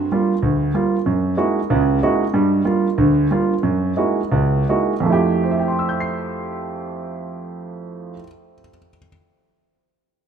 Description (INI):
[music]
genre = jazz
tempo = 160-189 BPM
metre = 4/4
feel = swing 62% on 8ths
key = F major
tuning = A4 = 440 Hz
[part]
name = warm concert grand piano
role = accompaniment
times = 0.0-9.1 s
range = Db2 to C7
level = -17 LUFS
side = right 2 dB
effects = none
[sound]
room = moderate plate reverb, RT60 2.8 s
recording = dreamy mix soaked in reverb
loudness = -16 LUFS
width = side -7 dB against mid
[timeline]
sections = 0.0-5.0 A section; 5.0-8.0 B section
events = slowing down 2.3-5.0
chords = 0.0 Gm7; 1.1 Gb13; 2.3 Gm7; 3.6 Gb13; 5.0 Fmaj9